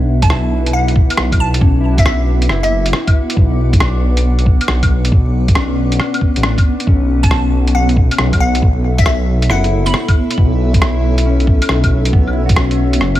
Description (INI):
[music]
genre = future garage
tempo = 137 BPM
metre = 4/4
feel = swing 66% on 16ths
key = B minor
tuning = A4 = 440 Hz
[part]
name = mellow electric guitar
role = accompaniment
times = 0.0-13.2 s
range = B3 to E5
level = -22 LUFS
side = left 3 dB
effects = sidechain pumping, ping-pong delay
[part]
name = granular cloud pad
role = sustained chords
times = 0.0-13.2 s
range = B3 to D6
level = -22 LUFS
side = right 1 dB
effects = built-in reverb, sidechain pumping
[part]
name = dark detuned saw bass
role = bass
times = 0.0-13.2 s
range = F#1 to B1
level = -15 LUFS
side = equal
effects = tube saturation, sidechain pumping
[part]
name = glassy wavetable pluck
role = melody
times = 0.2-2.9, 7.2-10.3 s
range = E5 to B5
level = -22 LUFS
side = left 1 dB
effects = chorus, tape echo
[part]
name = electronic kick drum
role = drums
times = 0.2-12.6 s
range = none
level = -12 LUFS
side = equal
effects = none
[part]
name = lo-fi sampler-style drum kit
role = drums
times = 0.2-13.2 s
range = claves, hi-hat, rim click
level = -19 LUFS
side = equal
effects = none
[sound]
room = light reverb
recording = vinyl crackle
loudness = -11 LUFS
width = side -14 dB against mid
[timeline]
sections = 0.0-13.2 A section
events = none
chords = 0.0 Bm